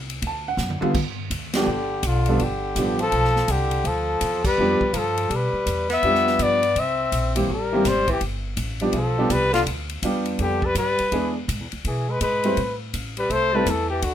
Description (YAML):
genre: jazz, small-group swing and bop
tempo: 165 BPM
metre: 4/4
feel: swing 64% on 8ths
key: G mixolydian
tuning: A4 = 440 Hz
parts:
  - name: upright bass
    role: bass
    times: 0.0-14.1 s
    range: G1 to B2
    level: -27 LUFS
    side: equal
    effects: none
  - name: swinging big-band drum kit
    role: drums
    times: 0.1-14.1 s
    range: crash cymbal, hi-hat, kick drum, ride cymbal, snare drum, toms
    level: -30 LUFS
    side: equal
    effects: none
  - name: clear upright piano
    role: accompaniment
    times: 0.3-13.7 s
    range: D3 to A5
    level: -24 LUFS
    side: right 1 dB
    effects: none
  - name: breathy tenor saxophone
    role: second line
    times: 1.5-14.1 s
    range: D3 to C4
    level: -28 LUFS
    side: right 1 dB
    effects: none
  - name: breathy trumpet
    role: melody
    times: 1.6-14.1 s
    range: F4 to E5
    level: -23 LUFS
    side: left 3 dB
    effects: none
room: light reverb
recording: minimal, uncompressed stereo recording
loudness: -20 LUFS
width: side -10 dB against mid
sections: 0.9-14.1 A section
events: drum fill 0.6-0.9; band accent 1.5, 4.4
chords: 0.2 D; 0.9 G7; 6.8 C7; 8.2 G7; 11.1 E7; 12.6 Am7